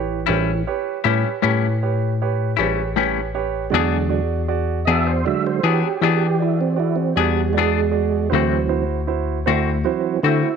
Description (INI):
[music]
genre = slow blues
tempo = 52 BPM (dotted quarters)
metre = 12/8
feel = straight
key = unclear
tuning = A4 = 443 Hz
[part]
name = warm grand piano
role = accompaniment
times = 0.0-10.5 s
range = E4 to D5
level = -25 LUFS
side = right 11 dB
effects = none
[part]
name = tonewheel organ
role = sustained chords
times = 0.0-10.6 s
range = D3 to E5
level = -23 LUFS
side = right 9 dB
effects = overdrive, chorus vibrato, slow rotary speaker
[part]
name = bell-like tine electric piano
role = bass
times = 0.0-10.4 s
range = A1 to E3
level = -21 LUFS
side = left 2 dB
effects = slow stereo tremolo
[part]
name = clean electric guitar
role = accompaniment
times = 0.3-10.5 s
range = A2 to G#4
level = -21 LUFS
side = left 16 dB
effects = tremolo
[sound]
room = light reverb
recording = 1960s-style stereo with parts hard left and right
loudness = -17 LUFS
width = side -6 dB against mid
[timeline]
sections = 0.0-10.6 A section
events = tonewheel organ solo 0.0-10.6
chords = 0.0 A7; 3.7 E7; 8.3 D7